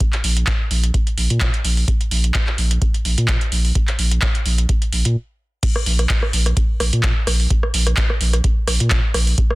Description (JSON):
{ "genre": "acid house", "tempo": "128 BPM", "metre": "4/4", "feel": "swing 54% on 16ths", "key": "unclear", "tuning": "A4 = 441 Hz", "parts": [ { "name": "electro analog drum machine", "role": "drums", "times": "0.0-9.6 s", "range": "crash cymbal, handclaps, hi-hat, rim click", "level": "-22 LUFS", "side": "right 1 dB", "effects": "none" }, { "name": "electronic kick drum", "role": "drums", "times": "0.0-9.5 s", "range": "none", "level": "-19 LUFS", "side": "equal", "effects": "none" }, { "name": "warm sub bass", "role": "bass", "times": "0.2-9.3 s", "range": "Bb1 to Bb2", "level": "-17 LUFS", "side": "equal", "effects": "tube saturation, sidechain pumping" } ], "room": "little or no reverb", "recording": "dense, heavily limited modern master", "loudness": "-16 LUFS", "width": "side -21 dB against mid", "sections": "0.0-5.6 A section; 5.6-9.6 B section", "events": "stop 5.2-5.6; drop 5.6-9.6", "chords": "none", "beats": "| 0.00 0.47 0.94 1.41 | 1.88 2.35 2.82 3.29 | 3.75 4.22 4.69 5.16 | 5.63 6.10 6.57 7.04 | 7.50 7.97 8.44 8.91 | 9.38" }